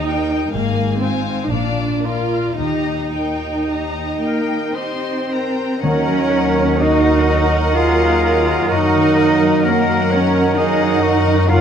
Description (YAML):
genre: classical, slow romantic movement for symphony orchestra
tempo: 53-66 BPM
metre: 3/4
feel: rubato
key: Eb major, Eb minor from 5.8 s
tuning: A4 = 438 Hz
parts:
  - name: warm chamber violin section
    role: melody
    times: 0.0-11.6 s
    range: D5 to C6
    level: -28 LUFS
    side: left 5 dB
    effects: none
  - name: dark chamber violin section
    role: second line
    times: 0.0-11.6 s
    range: G4 to Ab5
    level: -26 LUFS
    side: left 6 dB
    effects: none
  - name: warm chamber viola section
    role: accompaniment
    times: 0.0-11.6 s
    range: Bb3 to Bb4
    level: -23 LUFS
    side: right 3 dB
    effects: none
  - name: concert harp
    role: arpeggios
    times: 0.0-11.6 s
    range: Gb2 to Bb5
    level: -24 LUFS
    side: left 9 dB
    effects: none
  - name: dark chamber cello section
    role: bass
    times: 0.0-11.6 s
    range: Eb2 to F4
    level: -20 LUFS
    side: right 2 dB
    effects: none
  - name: dark chamber double bass section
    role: bass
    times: 0.0-11.6 s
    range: Ab1 to Gb2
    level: -22 LUFS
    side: right 1 dB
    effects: none
  - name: bright clarinet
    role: second line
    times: 4.2-11.6 s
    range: Bb4 to F5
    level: -24 LUFS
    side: left 1 dB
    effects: none
  - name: flute section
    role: second line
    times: 5.8-11.6 s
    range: Bb4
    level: -26 LUFS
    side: right 6 dB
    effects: none
  - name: mellow cor anglais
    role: second line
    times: 5.8-11.6 s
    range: Gb4 to Bb4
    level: -25 LUFS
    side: right 1 dB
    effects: none
  - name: mellow bassoon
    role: accompaniment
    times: 5.8-11.6 s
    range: Gb3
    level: -26 LUFS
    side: right 1 dB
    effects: none
  - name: clear trombone section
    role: sustained chords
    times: 5.8-11.6 s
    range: Db3 to Gb3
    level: -24 LUFS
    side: right 5 dB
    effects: none
  - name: warm French horn section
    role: sustained chords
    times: 5.8-11.6 s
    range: Bb3 to Bb4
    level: -26 LUFS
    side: left 3 dB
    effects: none
  - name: timpani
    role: percussion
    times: 5.8-7.3 s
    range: Eb3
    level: -25 LUFS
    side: right 1 dB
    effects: none
room: moderate scoring stage reverb, RT60 1.6 s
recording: close, detailed microphones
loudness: -14 LUFS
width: side -8 dB against mid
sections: 0.0-5.8 A section; 5.8-11.6 B section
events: none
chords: 0.0 Eb; 0.5 Fm/Ab; 1.5 Bb; 2.6 Eb; 5.8 Ebm; 8.7 Ebm/Gb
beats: 0.54 1.51 | 2.58 3.69 4.76 | 5.83 6.82 7.77 | 8.71 9.66 10.58 | 11.50